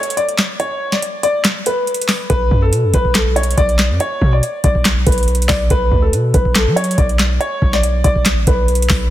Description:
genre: hip hop, trap.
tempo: 141 BPM.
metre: 4/4.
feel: half-time.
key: B minor.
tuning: A4 = 439 Hz.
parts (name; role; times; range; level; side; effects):
dark grand piano; melody; 0.0-9.1 s; A4 to D5; -18 LUFS; left 1 dB; ping-pong delay.
booming analog drum machine; drums; 0.0-9.1 s; handclaps, hi-hat, kick drum, snare drum; -16 LUFS; equal; overdrive.
hard-hitting 808-style bass; bass; 2.3-9.1 s; A1 to F#3; -16 LUFS; equal; none.
room: digital ambience.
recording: dense, heavily limited modern master.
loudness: -13 LUFS.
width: side -13 dB against mid.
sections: 0.0-9.1 A section.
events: break 0.0-2.3; kick muted 0.6-2.3.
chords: 0.0 N.C.; 2.3 Bm.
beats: 0.17 | 0.60 1.02 1.45 1.87 | 2.30 2.73 3.15 3.58 | 4.00 4.43 4.85 5.28 | 5.70 6.13 6.55 6.98 | 7.41 7.83 8.26 8.68.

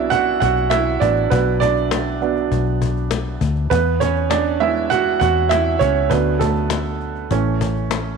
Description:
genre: piano-driven pop.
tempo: 100 BPM.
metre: 4/4.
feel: straight.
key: unclear.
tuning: A4 = 440 Hz.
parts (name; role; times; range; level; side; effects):
warm upright piano; accompaniment; 0.0-8.2 s; E3 to F#5; -18 LUFS; right 8 dB; none.
vintage muted fingered electric bass; bass; 0.0-8.2 s; A1 to E2; -22 LUFS; left 3 dB; none.
cajon; drums; 0.1-8.1 s; none; -25 LUFS; left 11 dB; none.
room: moderate echo chamber reverb, RT60 2.1 s.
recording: 1960s-style stereo with parts hard left and right.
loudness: -16 LUFS.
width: side -5 dB against mid.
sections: 0.0-8.2 A section.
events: upright piano solo 0.0-8.2.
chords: 0.0 Bm; 3.7 E; 6.1 D; 7.3 A.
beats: 0.12 0.72 | 1.32 1.92 2.51 3.11 | 3.71 4.31 4.91 5.51 | 6.11 6.71 7.31 7.91.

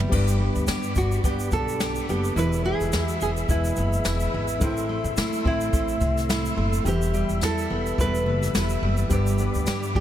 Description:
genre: acoustic pop.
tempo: 107 BPM.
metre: 4/4.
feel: swing 55% on 16ths.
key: G major.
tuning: A4 = 441 Hz.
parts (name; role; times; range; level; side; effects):
fingerpicked steel-string acoustic guitar; accompaniment; 0.0-10.0 s; E2 to G4; -27 LUFS; right 2 dB; none.
upright bass; bass; 0.0-10.0 s; E1 to A2; -26 LUFS; equal; none.
jazz brush drum kit; drums; 0.0-10.0 s; crash cymbal, kick drum, shaker, snare drum, toms; -28 LUFS; equal; none.
dark upright piano; accompaniment; 0.1-10.0 s; G3 to C5; -35 LUFS; left 6 dB; none.
mellow tonewheel organ; sustained chords; 0.1-10.0 s; G4 to E6; -34 LUFS; left 1 dB; chorus vibrato, slow rotary speaker.
tambourine; percussion; 0.7-9.8 s; none; -42 LUFS; left 7 dB; none.
nylon-string guitar; melody; 1.0-10.0 s; E4 to B4; -30 LUFS; right 1 dB; ping-pong delay.
room: light reverb.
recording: none.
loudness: -21 LUFS.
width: side -11 dB against mid.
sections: 0.1-10.0 A section.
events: none.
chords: 0.1 G; 2.4 E; 4.6 Am; 6.9 Em; 9.1 G.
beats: | 0.12 0.68 1.24 1.80 | 2.37 2.93 3.49 4.05 | 4.62 5.18 5.74 6.30 | 6.86 7.42 7.99 8.55 | 9.11 9.67.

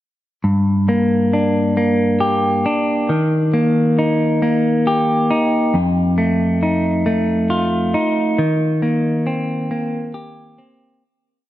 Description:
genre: post-rock.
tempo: 45 BPM (dotted quarters).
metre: 6/8.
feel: straight.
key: G minor.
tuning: A4 = 444 Hz.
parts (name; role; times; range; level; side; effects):
clean electric guitar; solo; 0.4-11.0 s; F2 to G4; -15 LUFS; equal; spring reverb, digital delay.
room: moderate plate reverb, RT60 3.4 s.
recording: dark, warm production.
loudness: -15 LUFS.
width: side -14 dB against mid.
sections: 0.4-11.0 A section.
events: fade-out 8.4-11.0.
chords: 0.4 Gm; 3.1 Eb; 5.7 F7; 8.4 Cm7/Eb.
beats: | 0.44 1.76 | 3.09 4.41 | 5.74 7.06 | 8.38 9.71.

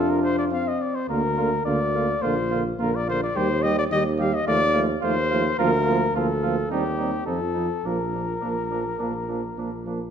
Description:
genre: classical, brass quintet.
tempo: 106 BPM.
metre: 4/4.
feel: straight.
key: Bb major.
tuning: A4 = 438 Hz.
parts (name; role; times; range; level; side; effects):
dark trumpet; melody; 0.0-9.9 s; G4 to F5; -26 LUFS; left 3 dB; none.
mellow trumpet; second line; 0.0-10.0 s; D4 to G4; -33 LUFS; right 10 dB; none.
mellow French horn; accompaniment; 0.0-10.0 s; G3 to D4; -28 LUFS; equal; none.
mellow trombone; accompaniment; 0.0-10.0 s; C3 to G3; -32 LUFS; right 6 dB; none.
mellow bass trombone; bass; 0.0-10.1 s; Bb1 to F2; -26 LUFS; right 1 dB; none.
room: wet recital hall reverb, RT60 1.5 s.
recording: none.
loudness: -21 LUFS.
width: side -8 dB against mid.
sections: 0.0-10.1 A section.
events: none.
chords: 0.0 F5; 1.1 Bb/D; 2.2 Bb; 3.4 Eb6; 4.5 F7/Eb; 5.6 Bb/D; 6.7 Cm/Eb; 7.3 F7; 7.8 Bb.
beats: 0.52 | 1.09 1.65 2.23 2.79 | 3.35 3.91 4.46 5.02 | 5.58 6.14 6.70 7.27 | 7.85 8.43 9.00 9.58.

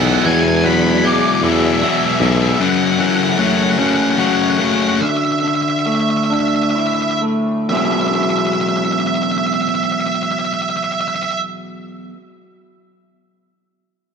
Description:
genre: rock.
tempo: 41-51 BPM (dotted quarters).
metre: 6/8.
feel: straight.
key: E mixolydian.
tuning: A4 = 441 Hz.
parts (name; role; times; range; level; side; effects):
octave-fuzz lead guitar; melody; 0.0-11.4 s; D5 to B5; -19 LUFS; right 3 dB; distortion, slapback echo.
phased analog pad; sustained chords; 0.0-5.0 s; F#3 to E5; -27 LUFS; equal; phaser, chorus.
electric guitar through a small old amp; arpeggios; 0.0-12.1 s; E2 to F#4; -19 LUFS; left 1 dB; slapback echo.
glockenspiel with soft plastic mallets; arpeggios; 0.0-2.6 s; E6 to G#6; -28 LUFS; right 7 dB; slapback echo.
distorted electric guitar; riff; 0.0-5.0 s; E2 to F#3; -18 LUFS; left 11 dB; overdrive.
clear tuba; bass; 0.0-2.5 s; B1 to E2; -16 LUFS; right 1 dB; none.
room: moderate lush hall reverb, RT60 2.9 s.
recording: none.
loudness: -14 LUFS.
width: side -6 dB against mid.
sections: 0.0-7.7 A section; 7.7-10.6 B section.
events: slowing down 2.6-7.7.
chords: 0.0 Eadd9; 2.6 F#m7; 5.0 Dsus2; 7.7 Eadd9.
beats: | 0.26 1.43 | 2.60 3.78 | 5.01 6.30 | 7.70 9.17.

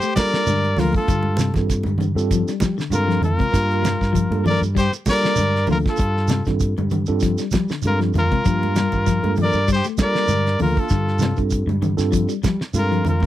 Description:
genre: afrobeat.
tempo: 98 BPM.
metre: 4/4.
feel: swing 54% on 16ths.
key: unclear.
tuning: A4 = 440 Hz.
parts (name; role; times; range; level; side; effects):
brilliant trumpet; melody; 0.0-13.3 s; A4 to D5; -23 LUFS; left 2 dB; none.
warm trumpet; second line; 0.0-13.3 s; F4 to Bb4; -28 LUFS; right 3 dB; none.
semi-hollow electric guitar; arpeggios; 0.0-13.3 s; C3 to A3; -25 LUFS; left 8 dB; none.
damped 70s drum kit; drums; 0.0-13.3 s; hi-hat, kick drum, snare drum; -22 LUFS; right 1 dB; none.
shekere; percussion; 0.0-13.2 s; none; -29 LUFS; right 5 dB; none.
mellow tine electric piano; accompaniment; 0.2-13.0 s; Bb3 to Bb4; -26 LUFS; right 3 dB; medium stereo tremolo.
fingered electric bass; bass; 0.2-13.3 s; D2 to G3; -22 LUFS; equal; none.
congas; percussion; 0.2-13.3 s; none; -28 LUFS; right 3 dB; none.
room: little or no reverb.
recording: dry, close 1970s-style studio recording.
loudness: -17 LUFS.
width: side -13 dB against mid.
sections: 0.0-13.3 A section.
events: none.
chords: 0.0 Gm9; 1.1 F69; 3.5 Gm9; 6.0 F69; 8.4 Gm9; 10.9 F69.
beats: 0.47 | 1.08 1.70 2.31 2.92 | 3.54 4.15 4.77 5.38 | 5.99 6.61 7.22 7.84 | 8.45 9.06 9.68 10.29 | 10.91 11.52 12.13 12.75.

